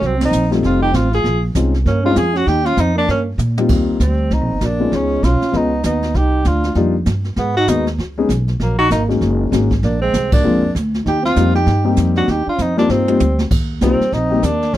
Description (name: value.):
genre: jazz, small-group swing and bop.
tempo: 196 BPM.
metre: 4/4.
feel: swing 61% on 8ths.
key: Eb major from 3.7 s.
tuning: A4 = 440 Hz.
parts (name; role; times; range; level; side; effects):
warm tenor saxophone; melody; 0.0-14.8 s; Bb3 to Ab4; -19 LUFS; equal; none.
mellow trombone; second line; 0.0-14.8 s; Gb3 to F4; -22 LUFS; right 5 dB; none.
upright bass; bass; 0.0-14.8 s; F1 to Bb2; -18 LUFS; right 1 dB; none.
jazz brush drum kit; drums; 0.0-14.8 s; brushed snare drum, crash cymbal, hi-hat, kick drum, ride cymbal, snare drum, toms; -22 LUFS; right 1 dB; none.
warm grand piano; accompaniment; 0.5-14.4 s; G3 to Ab4; -18 LUFS; left 4 dB; none.
room: light reverb.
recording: dry, close 1970s-style studio recording.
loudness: -14 LUFS.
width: side -13 dB against mid.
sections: 0.0-3.7 A section; 3.7-13.5 B section; 13.5-14.8 B section.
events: band accent 0.2, 10.3; drum fill 3.4-3.7, 12.9-13.5.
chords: 0.0 Cm7; 0.6 F7; 1.2 Bbm11; 2.5 Ebadd9; 3.7 Eb6; 4.9 Db9; 6.1 Cm11; 7.4 Abm9; 8.0 Db5; 8.6 Gb69; 9.8 Bb9; 11.1 Eb6.